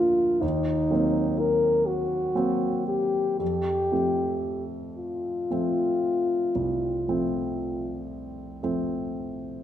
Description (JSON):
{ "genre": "classical, romantic duo for French horn and grand piano", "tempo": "38-42 BPM (dotted quarters)", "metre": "12/8", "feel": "rubato", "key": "unclear", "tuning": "A4 = 440 Hz", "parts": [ { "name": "dark French horn", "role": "melody", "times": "0.0-8.1 s", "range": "Eb4 to Bb4", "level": "-25 LUFS", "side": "left 2 dB", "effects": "none" }, { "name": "warm grand piano", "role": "accompaniment", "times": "0.0-9.6 s", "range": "C2 to D4", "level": "-28 LUFS", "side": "right 1 dB", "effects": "none" } ], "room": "moderate recital hall reverb, RT60 1.3 s", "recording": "none", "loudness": "-24 LUFS", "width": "side -10 dB against mid", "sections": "0.0-9.6 A section", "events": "none", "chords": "0.4 Cm7b5/Eb; 3.4 F" }